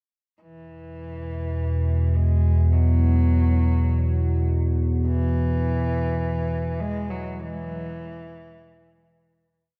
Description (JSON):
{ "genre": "dark ambient drone", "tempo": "free time", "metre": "none", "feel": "none", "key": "E major", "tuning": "A4 = 440 Hz", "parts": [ { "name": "warm cello", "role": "melody", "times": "0.4-9.2 s", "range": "E3 to G#3", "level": "-34 LUFS", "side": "equal", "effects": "tape echo" }, { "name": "deep rumbling drone", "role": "drone", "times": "1.2-9.8 s", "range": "E2 to B2", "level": "-23 LUFS", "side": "equal", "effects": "built-in reverb" } ], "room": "wet cathedral reverb, RT60 6.4 s", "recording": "worn, warbling old tape, cassette tape, warbly pitch drift", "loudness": "-23 LUFS", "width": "mono", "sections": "0.4-9.8 A section", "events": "fade-in on cello 0.4-9.8; fade-out 5.1-9.8", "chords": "0.4 Esus2" }